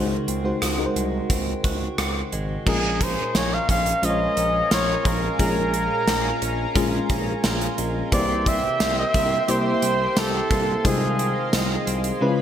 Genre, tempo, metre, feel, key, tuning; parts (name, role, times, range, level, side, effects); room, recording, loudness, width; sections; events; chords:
1980s-style pop; 88 BPM; 4/4; straight; A4 = 437 Hz
FM electric piano with auto-pan; accompaniment; 0.0-12.4 s; Bb2 to Db5; -27 LUFS; left 2 dB
direct-recorded clean electric guitar; riff; 0.0-12.4 s; Eb3 to G4; -33 LUFS; right 3 dB; wide subtle chorus, digital delay
smooth gliding synth bass; bass; 0.0-12.1 s; Ab1 to Db2; -28 LUFS; equal
gated 80s drum kit; drums; 0.3-12.2 s; crash cymbal, hi-hat, kick drum, rim click, snare drum, tambourine; -24 LUFS; equal
warm flugelhorn; melody; 2.7-11.5 s; Ab4 to F5; -24 LUFS; right 1 dB
chorused pulse-width pad; sustained chords; 2.7-12.4 s; Bb3 to C6; -30 LUFS; right 1 dB
wet lush hall reverb, RT60 2.6 s; bright 1980s-style digital production; -20 LUFS; side -9 dB against mid
0.0-2.7 A section; 2.7-12.4 B section
0.0 Ab7; 2.7 Bbm7; 8.1 C7; 10.8 Fm7/C